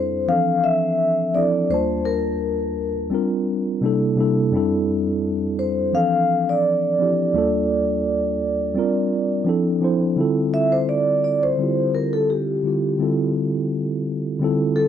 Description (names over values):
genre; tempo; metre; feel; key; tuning
R&B; 85 BPM; 4/4; swing 54% on 16ths; D minor; A4 = 439 Hz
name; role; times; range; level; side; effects
vibraphone with soft mallets; melody; 0.0-14.9 s; G4 to F5; -21 LUFS; equal; none
mellow tine electric piano; accompaniment; 0.0-14.9 s; Eb2 to A5; -20 LUFS; equal; medium stereo tremolo
room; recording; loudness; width
light reverb; dry, close 1970s-style studio recording; -18 LUFS; side -9 dB against mid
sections
0.0-10.2 A section; 10.2-14.9 B section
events
vibraphone solo 10.2-14.9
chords
0.3 Dm7; 1.7 Ebmaj9#11; 3.1 Bb69; 3.8 C13; 4.5 Fmaj13; 5.9 Dm7; 7.3 Ebmaj9#11; 8.8 Bb69; 9.5 Dm7; 10.2 Dm11